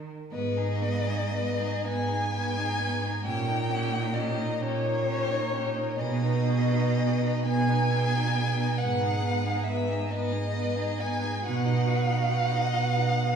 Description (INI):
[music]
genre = classical, slow romantic movement for string quartet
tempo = 38-46 BPM (dotted quarters)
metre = 6/8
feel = rubato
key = G# minor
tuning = A4 = 436 Hz
[part]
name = warm violin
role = second line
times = 0.0-13.4 s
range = C#5 to G#5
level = -30 LUFS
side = left 1 dB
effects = none
[part]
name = warm viola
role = accompaniment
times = 0.0-13.4 s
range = B3 to F#4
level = -34 LUFS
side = equal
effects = none
[part]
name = rich cello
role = bass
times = 0.0-13.4 s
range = G#2 to B2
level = -28 LUFS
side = right 3 dB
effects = none
[part]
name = rich violin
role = melody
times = 0.3-13.4 s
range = G4 to D#5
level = -37 LUFS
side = left 5 dB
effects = none
[sound]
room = wet recital hall reverb, RT60 1.4 s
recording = recorded in a church or concert hall, small room ambience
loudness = -25 LUFS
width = side -7 dB against mid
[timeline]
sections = 0.3-13.4 A section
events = none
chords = 0.3 G#m; 3.2 D#7/A#; 6.0 G#m/B; 8.8 G#m; 11.4 B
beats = | 0.32 1.84 | 3.24 4.61 | 5.98 7.44 | 8.78 10.11 | 11.43 12.75